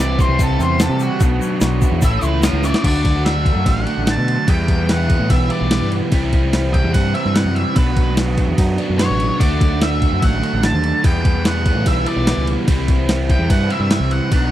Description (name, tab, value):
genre	indie rock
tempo	146 BPM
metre	4/4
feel	straight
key	unclear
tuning	A4 = 443 Hz
part	octave-fuzz lead guitar	melody	0.0-14.5 s	F#4 to A5	-23 LUFS	equal	distortion, slapback echo
part	biting overdriven guitar	riff	0.0-14.5 s	E2 to G4	-22 LUFS	right 7 dB	analog chorus, slapback echo
part	overdriven electric guitar	riff	0.0-14.5 s	A2 to G4	-25 LUFS	left 9 dB	phaser
part	growling fingered electric bass	bass	0.0-14.5 s	A1 to C3	-19 LUFS	equal	overdrive
part	crisp 8-bit digital drum machine	drums	0.2-14.4 s	crash cymbal, hi-hat, kick drum, ride cymbal, snare drum	-17 LUFS	equal	none
part	tube shaker	percussion	0.2-2.7 s	none	-34 LUFS	left 8 dB	none
room	little or no reverb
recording	dry, close 1970s-style studio recording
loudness	-14 LUFS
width	side -13 dB against mid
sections	0.0-2.8 A section; 2.8-14.5 B section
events	lead electric guitar solo 0.0-2.8; drum fill 2.6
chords	0.0 C; 1.2 Bm; 2.0 A; 2.8 Dadd9; 4.5 Em7; 6.1 C; 7.8 Bm; 9.4 Dadd9; 11.0 Em7; 12.7 C